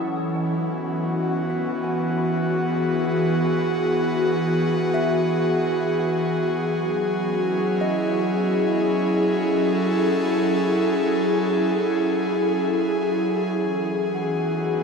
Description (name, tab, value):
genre	ambient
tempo	52 BPM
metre	3/4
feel	straight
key	E major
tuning	A4 = 440 Hz
part	airy breathy pad	sustained chords	0.0-14.8 s	E3 to A4	-20 LUFS	equal	chorus
part	soft synth bell	arpeggios	0.0-14.8 s	D#5 to D#6	-35 LUFS	left 1 dB	chorus, phaser, ping-pong delay
room	wet huge ambient reverb, RT60 7.9 s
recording	dreamy mix soaked in reverb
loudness	-20 LUFS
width	side -5 dB against mid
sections	0.0-13.6 A section; 13.6-14.8 B section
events	fade-in on synth bell 0.0-13.6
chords	0.0 Emaj7; 6.7 F#m7; 13.6 Emaj7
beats	0.92 2.07 | 3.22 4.37 5.51 | 6.65 7.79 8.93 | 10.07 11.22 12.40 | 13.58 14.74